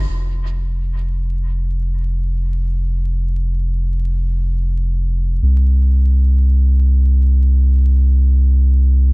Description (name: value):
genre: ambient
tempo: free time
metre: none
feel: none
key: unclear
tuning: A4 = 440 Hz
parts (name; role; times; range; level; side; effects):
- soft dub sub bass; bass; 0.0-9.1 s; F1 to C2; -14 LUFS; equal; none
room: little or no reverb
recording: vinyl crackle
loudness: -14 LUFS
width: side -37 dB against mid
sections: 0.1-9.1 A section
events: none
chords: none